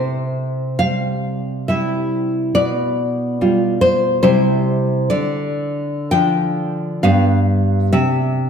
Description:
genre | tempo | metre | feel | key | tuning
romantic piece for solo classical guitar | 57-73 BPM | 3/4 | rubato | unclear | A4 = 440 Hz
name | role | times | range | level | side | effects
nylon-string guitar | solo | 0.0-8.5 s | G2 to G5 | -15 LUFS | equal | wide subtle chorus
room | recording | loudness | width
wet lush hall reverb, RT60 1.7 s, studio ambience | dreamy mix soaked in reverb | -15 LUFS | side -7 dB against mid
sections
0.0-8.5 A section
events
none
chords
0.0 C; 2.6 G7/B; 4.2 C; 5.1 Dm; 7.0 G7; 7.9 C

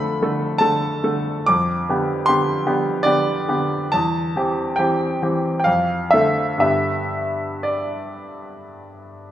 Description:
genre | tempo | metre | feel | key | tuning
classical, romantic nocturne for solo piano | 58-79 BPM | 3/4 | rubato | unclear | A4 = 440 Hz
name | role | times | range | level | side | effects
clear grand piano | solo | 0.0-9.3 s | E2 to D6 | -18 LUFS | equal | none
room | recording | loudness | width
moderate recital hall reverb, RT60 1.5 s | recorded in a church or concert hall | -18 LUFS | side -12 dB against mid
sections
0.0-9.3 A section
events
none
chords
0.0 Dm7/F; 1.5 G7/F; 3.9 C/E; 5.7 Dm/F; 6.6 G

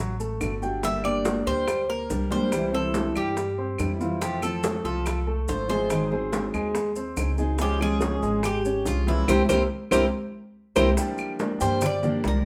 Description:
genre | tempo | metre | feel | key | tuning
latin, Cuban son and guajira | 142 BPM | 4/4 | straight | unclear | A4 = 441 Hz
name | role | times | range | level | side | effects
fingerpicked steel-string acoustic guitar | accompaniment | 0.0-12.4 s | C3 to Ab4 | -32 LUFS | equal | none
warm concert grand piano | arpeggios | 0.0-12.4 s | E3 to Ab5 | -33 LUFS | equal | none
upright bass | bass | 0.0-12.4 s | G1 to G2 | -32 LUFS | equal | none
congas | percussion | 0.0-12.4 s | none | -35 LUFS | equal | none
maracas | percussion | 0.0-12.4 s | none | -43 LUFS | equal | none
bongos | percussion | 0.4-12.4 s | none | -37 LUFS | equal | none
claves | percussion | 0.4-12.0 s | none | -38 LUFS | equal | none
Cuban tres | melody | 0.8-12.4 s | E4 to E5 | -30 LUFS | equal | none
room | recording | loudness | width
moderate large studio reverb, RT60 0.8 s | band playing live in one room | -25 LUFS | mono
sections
0.0-11.0 A section; 11.0-12.4 B section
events
band accent 9.3-11.0; drum fill 10.8; Cuban tres solo 11.0-12.4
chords
0.0 D; 0.8 Gm; 2.5 C; 4.2 F; 5.9 Ab7; 7.6 Db; 9.3 C7; 11.0 Gm7

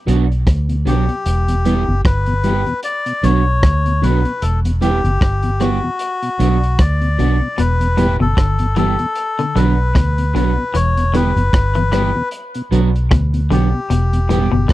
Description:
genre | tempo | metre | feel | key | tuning
roots reggae | 76 BPM | 4/4 | swing 57% on 16ths | B minor | A4 = 440 Hz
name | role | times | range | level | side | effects
electric guitar at the edge of break-up | accompaniment | 0.1-14.5 s | F#3 to G4 | -20 LUFS | right 7 dB | lush chorus
mellow tonewheel organ | accompaniment | 0.1-14.6 s | E2 to B3 | -21 LUFS | left 2 dB | chorus vibrato, slow rotary speaker
vintage muted fingered electric bass | bass | 0.1-14.7 s | E1 to D2 | -16 LUFS | equal | tube saturation
crunchy breakbeat drum kit | drums | 0.1-14.7 s | hi-hat, kick drum, rim click | -17 LUFS | equal | none
melodica | melody | 0.9-14.7 s | F#4 to D5 | -21 LUFS | left 3 dB | dub echo
semi-hollow electric guitar | arpeggios | 7.6-14.7 s | A2 to E3 | -22 LUFS | left 5 dB | none
room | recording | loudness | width
little or no reverb | dry, close 1970s-style studio recording | -14 LUFS | side -16 dB against mid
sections
0.0-14.7 A section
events
none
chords
0.0 Bm; 1.3 Em; 2.8 Bm; 4.4 Em; 6.0 Bm; 7.6 Em; 9.2 Bm; 10.7 Em; 12.3 Bm; 13.9 Em

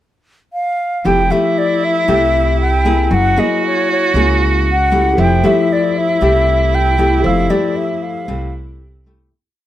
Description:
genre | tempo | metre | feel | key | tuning
bossa nova | 116 BPM | 4/4 | straight | F major | A4 = 440 Hz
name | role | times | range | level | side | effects
mellow silver concert flute | melody | 0.5-8.5 s | Db5 to G5 | -17 LUFS | left 1 dB | none
clear cello | second line | 1.0-9.0 s | E4 to Gb4 | -20 LUFS | right 5 dB | none
nylon-string guitar | accompaniment | 1.0-9.3 s | C3 to Ab4 | -17 LUFS | left 3 dB | none
upright bass | bass | 1.1-9.3 s | F1 to Db2 | -17 LUFS | right 1 dB | none
tine electric piano | accompaniment | 5.1-9.3 s | G4 to E6 | -24 LUFS | right 5 dB | none
room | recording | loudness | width
light reverb | none | -12 LUFS | side -12 dB against mid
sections
0.0-1.0 pickup bar; 1.0-9.3 A section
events
fade-out 7.2-9.3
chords
0.0 N.C.; 1.0 Fmaj9; 3.1 Gb9; 5.2 Fmaj9

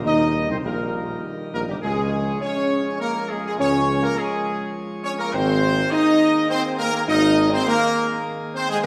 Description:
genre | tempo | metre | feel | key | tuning
classical | 102 BPM | 3/4 | straight | unclear | A4 = 440 Hz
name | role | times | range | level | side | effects
clear trombone section | sustained chords | 0.0-8.8 s | G3 to Eb4 | -27 LUFS | equal | none
mellow French horn section | sustained chords | 0.0-8.9 s | G3 to Eb4 | -27 LUFS | equal | none
pipe organ, principal chorus | sustained chords | 0.0-8.9 s | Eb3 to Db5 | -32 LUFS | equal | none
warm tuba | bass | 0.0-7.6 s | G1 to Eb2 | -29 LUFS | equal | none
clear trumpet section | melody | 0.1-8.9 s | G4 to Eb5 | -27 LUFS | equal | none
room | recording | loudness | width
wet scoring stage reverb, RT60 1.9 s | none | -21 LUFS | mono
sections
0.0-8.9 A section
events
none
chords
0.0 Eb; 1.8 Db; 5.3 Abadd9

